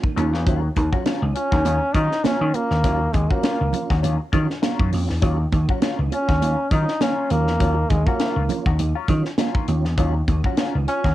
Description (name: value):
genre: funk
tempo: 101 BPM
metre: 4/4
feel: swing 56% on 16ths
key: Eb minor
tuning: A4 = 440 Hz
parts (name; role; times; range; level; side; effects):
- semi-hollow electric guitar; accompaniment; 0.0-11.1 s; Gb3 to Gb4; -31 LUFS; left 10 dB; wah, cassette tape, plate reverb
- mellow tonewheel organ; stabs; 0.0-11.0 s; Eb3 to F4; -31 LUFS; right 8 dB; chorus vibrato, fast rotary speaker, cassette tape, plate reverb
- tight funk drum kit; drums; 0.0-11.1 s; hi-hat, kick drum, snare drum; -23 LUFS; equal; cassette tape
- vintage slap bass; bass; 0.2-11.1 s; Db2 to Eb3; -21 LUFS; equal; transformer saturation
- congas; percussion; 0.2-10.7 s; none; -30 LUFS; right 9 dB; none
- clear trombone; melody; 1.4-11.1 s; Ab3 to Eb4; -23 LUFS; equal; cassette tape, plate reverb
room: light reverb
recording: home recording on cassette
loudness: -18 LUFS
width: side -14 dB against mid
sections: 0.0-11.1 A section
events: none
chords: 0.0 Ebm9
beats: | 0.46 1.06 1.65 2.25 | 2.84 3.44 4.03 4.63 | 5.22 5.82 6.41 7.01 | 7.61 8.20 8.80 9.39 | 9.99 10.58